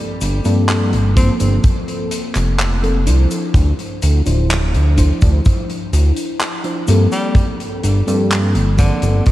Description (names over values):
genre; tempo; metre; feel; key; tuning
vaporwave; 63 BPM; 4/4; straight; unclear; A4 = 439 Hz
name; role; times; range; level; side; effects
FM electric piano with soft pad layer; accompaniment; 0.0-9.3 s; F3 to C5; -21 LUFS; left 1 dB; tremolo, analog chorus, tape echo
chorused synth bass; bass; 0.2-9.2 s; D1 to G2; -14 LUFS; equal; tube saturation
big rock drum kit; drums; 0.2-9.3 s; cabasa, handclaps, hi-hat; -24 LUFS; equal; none
breathy tenor saxophone; melody; 1.2-9.3 s; C3 to C4; -27 LUFS; equal; tape echo
kick drum; drums; 1.2-9.3 s; none; -16 LUFS; equal; none
room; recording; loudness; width
light reverb, small room ambience; none; -13 LUFS; side -15 dB against mid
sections
0.0-9.3 A section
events
none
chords
0.0 Gm11; 3.5 Dm9; 7.4 Gm11